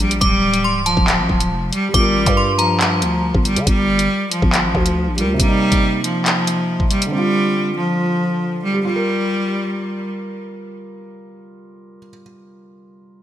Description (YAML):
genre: hip hop, drill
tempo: 139 BPM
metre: 4/4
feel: half-time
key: G minor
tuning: A4 = 440 Hz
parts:
  - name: bright cello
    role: melody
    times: 0.0-10.1 s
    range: F3 to G3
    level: -19 LUFS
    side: equal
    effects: digital delay
  - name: growling 808-style bass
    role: bass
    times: 0.0-5.4 s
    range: C1 to D3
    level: -22 LUFS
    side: equal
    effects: none
  - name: drill drum kit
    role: drums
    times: 0.0-7.1 s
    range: handclaps, hi-hat, kick drum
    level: -18 LUFS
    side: equal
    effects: gated reverb
  - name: metallic FM bell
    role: second line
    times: 0.2-3.2 s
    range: A5 to D6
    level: -21 LUFS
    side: equal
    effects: chorus, phaser, digital delay
  - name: felt-muted upright piano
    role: accompaniment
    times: 1.9-13.2 s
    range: C3 to Bb4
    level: -25 LUFS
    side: right 2 dB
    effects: none
room: light reverb, digital ambience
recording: bright 1980s-style digital production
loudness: -15 LUFS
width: side -11 dB against mid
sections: 0.0-8.8 A section; 8.8-12.3 B section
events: none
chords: 0.2 Dm; 1.9 Gm7; 5.4 Cm7; 7.1 Dm7; 8.8 Gm7